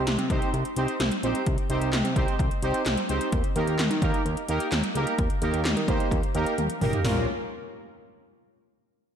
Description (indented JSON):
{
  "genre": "synth-pop",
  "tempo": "129 BPM",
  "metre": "4/4",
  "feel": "straight",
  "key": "unclear",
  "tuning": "A4 = 440 Hz",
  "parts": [
    { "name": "analog synth brass", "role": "accompaniment", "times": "0.0-7.3 s", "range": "Bb3 to C5", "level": "-28 LUFS", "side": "right 1 dB", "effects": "chorus, slapback echo" },
    { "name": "fat analog bass", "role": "bass", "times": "0.0-7.3 s", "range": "Ab1 to Eb3", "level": "-28 LUFS", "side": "equal", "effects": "none" },
    { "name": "80s electronic pad drums", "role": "drums", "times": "0.1-7.2 s", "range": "handclaps, hi-hat, kick drum, snare drum, toms", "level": "-27 LUFS", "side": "equal", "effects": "gated reverb on snare and toms, overdrive" }
  ],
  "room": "moderate lush hall reverb, RT60 1.8 s",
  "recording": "big arena sound",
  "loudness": "-23 LUFS",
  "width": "side -8 dB against mid",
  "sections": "0.0-7.0 A section; 7.0-8.9 B section",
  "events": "drum fill 6.6-7.0",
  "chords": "0.0 Cm; 3.3 Eb; 7.0 N.C."
}